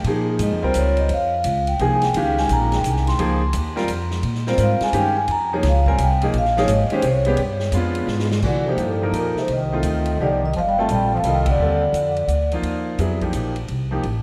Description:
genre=modal jazz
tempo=171 BPM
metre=3/4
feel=swing 65% on 8ths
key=Bb dorian, C dorian from 8.4 s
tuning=A4 = 440 Hz
part: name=upright bass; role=bass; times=0.0-14.2 s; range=G1 to C3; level=-24 LUFS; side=equal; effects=none
part: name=swinging big-band drum kit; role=drums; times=0.0-14.1 s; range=crash cymbal, hi-hat, kick drum, ride cymbal, snare drum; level=-35 LUFS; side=equal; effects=none
part: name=clear grand piano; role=accompaniment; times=0.1-14.0 s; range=Eb3 to Bb4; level=-27 LUFS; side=equal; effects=lush chorus
part: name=vibraphone with soft mallets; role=melody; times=0.4-12.5 s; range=A4 to C6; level=-24 LUFS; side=equal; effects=diffuse ambient delay
part: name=warm bass clarinet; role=second line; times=8.4-12.5 s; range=A2 to A3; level=-29 LUFS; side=equal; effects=diffuse ambient delay
room=moderate lush hall reverb, RT60 1.8 s, small room ambience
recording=dreamy mix soaked in reverb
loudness=-20 LUFS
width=mono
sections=0.0-8.4 A section; 8.4-14.2 B section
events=vibraphone solo 0.0-8.4; drum fill 8.1-8.4; band accent 11.4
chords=0.0 Bbm11; 7.4 G7b9; 8.4 Cm11

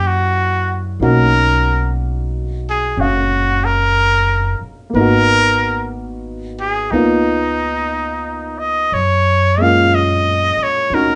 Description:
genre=jazz ballad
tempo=61 BPM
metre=4/4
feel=swing 66% on 8ths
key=unclear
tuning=A4 = 440 Hz
part: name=trumpet with straight mute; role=melody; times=0.0-11.2 s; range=Eb4 to F5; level=-18 LUFS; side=equal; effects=none
part: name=warm upright piano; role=accompaniment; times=0.0-11.2 s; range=G3 to F5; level=-22 LUFS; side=equal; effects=none
part: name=upright bass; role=bass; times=0.0-11.2 s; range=F#1 to Gb2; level=-22 LUFS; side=equal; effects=none
room=wet club reverb, RT60 0.6 s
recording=heard from further back in the room, nothing above 10.3 kHz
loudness=-16 LUFS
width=mono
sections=0.0-11.2 A section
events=none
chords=0.0 Gb7b9; 1.0 Bmaj9; 4.9 Abm9; 6.9 Db13; 8.9 Gbmaj9

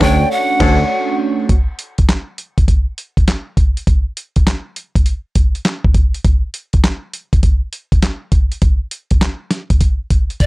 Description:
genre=R&B, new jack swing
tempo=101 BPM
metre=4/4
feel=swing 65% on 16ths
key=unclear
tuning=A4 = 440 Hz
part: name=breathy bright pan flute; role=melody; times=0.0-1.2, 10.4-10.5 s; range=D5 to G5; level=-18 LUFS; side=equal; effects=digital delay
part: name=FM electric piano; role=accompaniment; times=0.0-1.5 s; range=A3 to C#5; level=-18 LUFS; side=right 2 dB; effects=chorus, phaser
part: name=warm horn section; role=stabs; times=0.0-0.8 s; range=D4 to C#5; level=-25 LUFS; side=left 3 dB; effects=digital delay
part: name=fingered electric bass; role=bass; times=0.0-0.8 s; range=D2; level=-15 LUFS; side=equal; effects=none
part: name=dusty soul sampler-style drum kit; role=drums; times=0.0-10.5 s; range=crash cymbal, handclaps, hi-hat, kick drum, snare drum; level=-13 LUFS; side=equal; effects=none
room=little or no reverb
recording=dark, warm production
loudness=-14 LUFS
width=side -21 dB against mid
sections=0.0-1.5 A section; 1.5-10.5 B section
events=break 0.0-1.5; band accent 0.0-1.5; drum fill 9.8-10.5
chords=0.0 Dmaj7; 1.5 N.C.

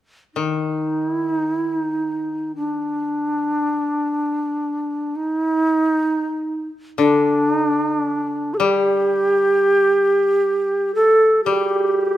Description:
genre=japanese traditional, Japanese chamber music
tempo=free time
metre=none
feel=none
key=unclear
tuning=A4 = 440 Hz
part: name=mellow hollow shakuhachi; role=melody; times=0.3-12.2 s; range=D4 to A4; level=-18 LUFS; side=right 1 dB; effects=none
part: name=koto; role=accompaniment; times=0.4-12.2 s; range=D3 to G3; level=-23 LUFS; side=left 5 dB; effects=none
room=light reverb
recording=none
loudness=-17 LUFS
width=side -13 dB against mid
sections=0.0-12.2 A section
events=none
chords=none

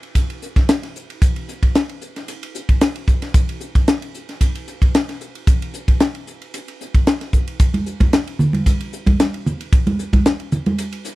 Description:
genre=jazz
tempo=113 BPM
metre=4/4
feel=swing 54% on 16ths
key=none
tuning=none
part: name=crisp fusion drum kit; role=drums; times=0.0-11.2 s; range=hi-hat, kick drum, ride cymbal, snare drum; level=-16 LUFS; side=equal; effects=none
part: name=congas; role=percussion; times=7.7-10.8 s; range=none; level=-20 LUFS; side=right 2 dB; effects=none
room=little or no reverb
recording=none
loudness=-16 LUFS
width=side -18 dB against mid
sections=0.0-11.2 A section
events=none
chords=none

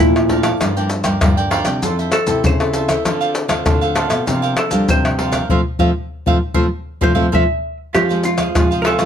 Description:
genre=samba and choro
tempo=98 BPM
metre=4/4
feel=straight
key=F major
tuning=A4 = 439 Hz
part: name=vintage hollow-body jazz guitar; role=melody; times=0.0-9.1 s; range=E4 to E5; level=-19 LUFS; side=right 1 dB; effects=none
part: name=cavaquinho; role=accompaniment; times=0.0-9.1 s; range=D4 to A5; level=-23 LUFS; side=right 5 dB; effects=none
part: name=nylon-string guitar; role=accompaniment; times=0.0-9.1 s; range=F2 to A4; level=-23 LUFS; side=left 2 dB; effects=none
part: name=nylon-string guitar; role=bass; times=0.0-9.1 s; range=F2 to G3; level=-20 LUFS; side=equal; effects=none
part: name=maracas, surdo, pandeiro and tamborim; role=percussion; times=0.0-9.1 s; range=none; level=-18 LUFS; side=left 1 dB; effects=none
room=light reverb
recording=close, detailed microphones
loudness=-14 LUFS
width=side -8 dB against mid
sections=0.0-7.9 A section; 7.9-9.1 B section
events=hollow-body jazz guitar solo 0.0-7.9; band accent 5.5-7.9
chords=0.0 Bbmaj7; 0.6 Gm7; 1.8 Fmaj7; 3.1 Dm7; 4.3 C9sus4; 5.5 Fmaj7; 7.9 Fm

